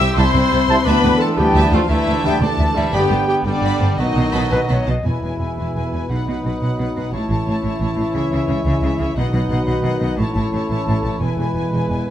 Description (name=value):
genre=cinematic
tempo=116 BPM (dotted quarters)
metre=12/8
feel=straight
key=unclear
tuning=A4 = 440 Hz
part: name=warm symphonic violin section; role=melody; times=0.0-12.1 s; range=D5 to E6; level=-28 LUFS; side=left 4 dB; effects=none
part: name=large flute ensemble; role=second line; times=0.0-12.0 s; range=D5 to E6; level=-31 LUFS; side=left 2 dB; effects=none
part: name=warm cor anglais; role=second line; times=0.0-12.1 s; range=F#3 to D#5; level=-29 LUFS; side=right 2 dB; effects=none
part: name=warm symphonic violin section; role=second line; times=0.0-12.1 s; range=B4 to B5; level=-31 LUFS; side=left 1 dB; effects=none
part: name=warm symphonic viola section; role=accompaniment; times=0.0-12.1 s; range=D4 to E5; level=-26 LUFS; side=left 1 dB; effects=none
part: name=dark French horn section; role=sustained chords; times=0.0-12.1 s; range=D3 to G#4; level=-26 LUFS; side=left 5 dB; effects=none
part: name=rich symphonic cello section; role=bass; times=0.0-12.0 s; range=C2 to C#3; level=-23 LUFS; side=right 1 dB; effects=none
part: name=rich symphonic double bass section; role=bass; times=0.0-12.1 s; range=E1 to D2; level=-22 LUFS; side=right 1 dB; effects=none
part: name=warm trombone section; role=sustained chords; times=0.2-12.1 s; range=A2 to E4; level=-26 LUFS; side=right 3 dB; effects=none
part: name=dark trumpet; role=stabs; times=0.2-12.1 s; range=A4 to A5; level=-27 LUFS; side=right 1 dB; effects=none
part: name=warm clarinet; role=second line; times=4.5-11.9 s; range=D#4 to D#5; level=-26 LUFS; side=left 3 dB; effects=none
room=moderate recital hall reverb, RT60 1.6 s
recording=none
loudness=-16 LUFS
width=side -11 dB against mid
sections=0.0-5.1 A section; 5.1-12.1 B section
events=none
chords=0.0 C6; 0.9 Dsus2; 2.9 G; 4.0 B7; 5.1 E; 6.1 B; 7.1 A; 8.2 C#m; 9.2 B; 10.2 A; 11.2 E